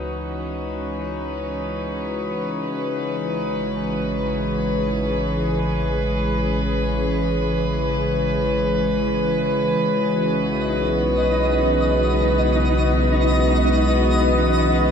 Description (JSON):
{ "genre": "ambient", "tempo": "free time", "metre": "none", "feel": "none", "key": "unclear", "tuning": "A4 = 443 Hz", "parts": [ { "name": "dark studio string section", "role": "sustained chords", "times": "0.0-14.9 s", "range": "E3 to B4", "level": "-22 LUFS", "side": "left 1 dB", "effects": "none" }, { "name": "round analog bass", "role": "bass", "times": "0.0-14.9 s", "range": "A1 to C#2", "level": "-25 LUFS", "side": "equal", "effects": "none" }, { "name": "analog drone", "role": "drone", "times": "0.0-14.9 s", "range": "C#3 to G#3", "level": "-27 LUFS", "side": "right 2 dB", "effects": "chorus" }, { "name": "twinkling granular texture", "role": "texture", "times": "9.8-14.9 s", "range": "D#4 to D#5", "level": "-22 LUFS", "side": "left 1 dB", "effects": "built-in reverb" } ], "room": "wet lush hall reverb, RT60 2.9 s", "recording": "none", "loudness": "-19 LUFS", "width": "side -7 dB against mid", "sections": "0.0-14.9 A section", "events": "fade-in on string section 0.0-14.9; fade-in on analog synth bass 0.0-14.9; fade-in on synth drone 0.0-14.9", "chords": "0.0 C#m11; 2.7 Amaj9; 9.8 Bsus4", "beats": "free time" }